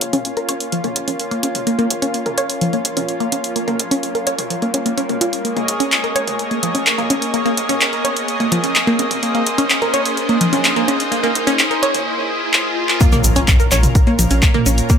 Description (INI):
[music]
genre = melodic techno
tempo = 127 BPM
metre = 4/4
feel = straight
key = Bb minor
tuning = A4 = 440 Hz
[part]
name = lush unison pad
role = sustained chords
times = 0.0-15.0 s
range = Bb3 to Eb5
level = -22 LUFS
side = equal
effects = chorus, sidechain pumping
[part]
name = tight sequencer bass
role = bass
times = 0.0-14.8 s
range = Ab1 to Bb2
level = -22 LUFS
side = equal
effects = sidechain pumping, high-pass filter
[part]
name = punchy analog drum machine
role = drums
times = 0.0-15.0 s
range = handclaps, hi-hat, toms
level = -19 LUFS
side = equal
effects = high-pass filter on hats, high-pass filter on toms, high-pass filter on snare, high-pass filter on room
[part]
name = riser and impact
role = sound effects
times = 0.0-14.9 s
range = none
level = -25 LUFS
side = left 1 dB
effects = none
[part]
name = wide unison pluck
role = arpeggios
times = 0.1-15.0 s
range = F3 to Db5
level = -19 LUFS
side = equal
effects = sidechain pumping, tape echo
[part]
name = bowed-like drone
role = drone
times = 13.7-15.0 s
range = Bb2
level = -28 LUFS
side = right 3 dB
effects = none
[part]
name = electronic kick drum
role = drums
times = 13.0-15.0 s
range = none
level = -13 LUFS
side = equal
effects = none
[part]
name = tube shaker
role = percussion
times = 13.0-15.0 s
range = none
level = -24 LUFS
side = left 3 dB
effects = none
[sound]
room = moderate digital room reverb, RT60 1.1 s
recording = none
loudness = -15 LUFS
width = side -7 dB against mid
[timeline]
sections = 0.0-13.0 A section; 13.0-15.0 B section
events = build-up 0.0-13.0; riser 0.0-13.0; filter sweep on synth arpeggio sound 0.0-13.0; drum fill 12.5-13.0; drop 13.0-15.0; impact 13.0-14.9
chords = 0.0 Bbm; 5.4 Dbsus2/Bb; 13.0 Bbm